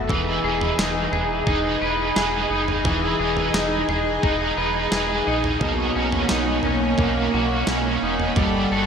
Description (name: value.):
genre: dream pop.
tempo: 87 BPM.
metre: 4/4.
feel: straight.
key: B major.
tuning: A4 = 439 Hz.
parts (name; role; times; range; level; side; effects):
string machine, violas; sustained chords; 0.0-8.9 s; A#3 to B5; -27 LUFS; right 1 dB; ensemble chorus.
electric guitar at the edge of break-up; arpeggios; 0.0-8.9 s; B2 to B4; -23 LUFS; left 2 dB; wide subtle chorus, ping-pong delay.
round analog bass; bass; 0.0-8.9 s; E1 to B1; -29 LUFS; right 1 dB; none.
cranked stack guitar; accompaniment; 0.1-8.9 s; B2 to B4; -26 LUFS; right 3 dB; overdrive, harmonic tremolo, ensemble chorus.
clean 12-bit digital drum machine; drums; 0.1-8.5 s; kick drum, snare drum, toms; -26 LUFS; right 1 dB; gated reverb.
room: wet lush hall reverb, RT60 2.6 s.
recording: bright 1980s-style digital production.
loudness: -19 LUFS.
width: side -7 dB against mid.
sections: 0.0-8.9 A section.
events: none.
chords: 0.1 Emaj7; 5.6 Bmaj9.